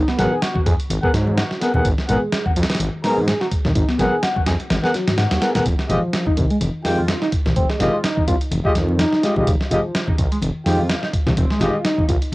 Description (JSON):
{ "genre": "breakbeat, breaks", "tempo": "126 BPM", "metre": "4/4", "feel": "swing 56% on 16ths", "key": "F phrygian", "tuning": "A4 = 440 Hz", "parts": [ { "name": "overdriven synth lead", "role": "riff", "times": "0.0-12.2 s", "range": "Eb3 to Ab4", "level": "-24 LUFS", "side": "equal", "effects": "tube saturation, wide subtle chorus, cassette tape, analog delay" }, { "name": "detuned saw bass", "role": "bass", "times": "0.0-12.3 s", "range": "F1 to Ab2", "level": "-21 LUFS", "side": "equal", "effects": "none" }, { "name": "dusty soul sampler-style drum kit", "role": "drums", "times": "0.1-12.3 s", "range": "hi-hat, kick drum, snare drum", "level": "-21 LUFS", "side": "equal", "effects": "cassette tape" }, { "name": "mellow brass ensemble", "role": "stabs", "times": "0.2-11.8 s", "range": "Ab3 to Bb5", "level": "-22 LUFS", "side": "left 1 dB", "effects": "low-pass filter, cassette tape, analog delay" }, { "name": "congas", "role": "percussion", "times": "0.2-12.3 s", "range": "none", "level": "-27 LUFS", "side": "left 1 dB", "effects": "none" } ], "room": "light reverb", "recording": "home recording on cassette", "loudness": "-17 LUFS", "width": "side -20 dB against mid", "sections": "0.0-12.3 A section", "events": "filter sweep on brass ensemble 0.0-12.3", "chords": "0.0 Abm9; 5.7 Fm9" }